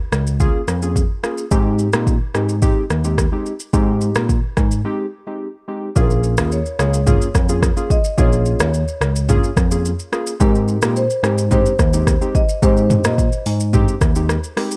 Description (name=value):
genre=afrobeats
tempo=108 BPM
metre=4/4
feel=straight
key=Bb dorian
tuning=A4 = 441 Hz
part: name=bell-like tine electric piano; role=bass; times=0.1-14.4 s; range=Bb1 to Bb2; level=-21 LUFS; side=equal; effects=none
part: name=deep house drum kit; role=drums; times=0.1-14.8 s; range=hi-hat, kick drum, rim click, shaker, toms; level=-20 LUFS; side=equal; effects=overdrive
part: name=warm analog keys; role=accompaniment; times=0.4-14.8 s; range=Ab3 to Ab4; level=-25 LUFS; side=equal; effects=chorus
part: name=marimba with medium mallets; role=melody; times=6.0-14.1 s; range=Bb4 to Eb5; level=-26 LUFS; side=equal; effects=digital delay
room=little or no reverb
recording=dark, warm production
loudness=-17 LUFS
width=mono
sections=0.0-6.0 A section; 6.0-14.8 B section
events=break 4.8-6.0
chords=0.0 Bbm7; 1.5 Abmaj7; 6.0 Bbm7; 10.4 Abmaj7